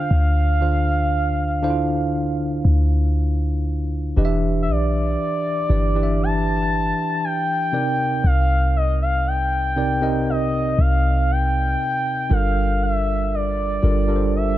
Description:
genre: contemporary R&B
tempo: 59 BPM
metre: 4/4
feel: straight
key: E phrygian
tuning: A4 = 440 Hz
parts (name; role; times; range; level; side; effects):
- gliding portamento lead; melody; 0.0-14.6 s; D5 to A5; -23 LUFS; equal; chorus, ping-pong delay
- tine electric piano; accompaniment; 0.0-14.6 s; C3 to F5; -24 LUFS; right 1 dB; medium stereo tremolo
- clean 808-style bass; bass; 0.1-14.6 s; E1 to D2; -20 LUFS; equal; none
room: little or no reverb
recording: none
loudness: -18 LUFS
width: side -14 dB against mid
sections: 0.0-4.2 A section; 4.2-14.6 B section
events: none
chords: 0.0 Dm7; 4.2 Em7; 7.7 Cm7; 12.3 Gm7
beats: | 0.10 1.12 2.14 3.15 | 4.17 5.19 6.20 7.22 | 8.24 9.26 10.27 11.29 | 12.31 13.32 14.34

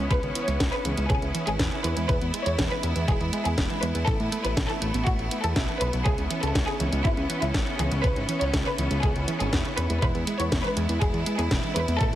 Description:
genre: italo disco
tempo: 121 BPM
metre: 4/4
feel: straight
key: C# minor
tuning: A4 = 440 Hz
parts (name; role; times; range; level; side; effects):
- bright symphonic violin section; melody; 0.0-12.2 s; E4 to C#5; -31 LUFS; equal; tape echo
- bright studio string section; sustained chords; 0.0-12.2 s; G#3 to E4; -31 LUFS; equal; none
- wide unison pluck; arpeggios; 0.0-12.1 s; B2 to A4; -34 LUFS; right 3 dB; ping-pong delay
- fat analog bass; bass; 0.0-12.2 s; E1 to A2; -28 LUFS; equal; none
- electronic kick drum; drums; 0.1-12.1 s; none; -27 LUFS; equal; none
- house drum kit; drums; 0.1-12.2 s; hi-hat, snare drum; -32 LUFS; equal; overdrive
room: light reverb, digital ambience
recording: heavily compressed radio sound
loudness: -23 LUFS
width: side -13 dB against mid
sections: 0.0-12.2 A section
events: none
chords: 0.0 C#m7; 2.1 E; 4.1 Asus2; 6.1 C#m7; 10.0 E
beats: | 0.11 0.60 1.10 1.59 | 2.09 2.59 3.08 3.58 | 4.07 4.57 5.07 5.56 | 6.06 6.55 7.05 7.54 | 8.04 8.54 9.03 9.53 | 10.02 10.52 11.02 11.51 | 12.01

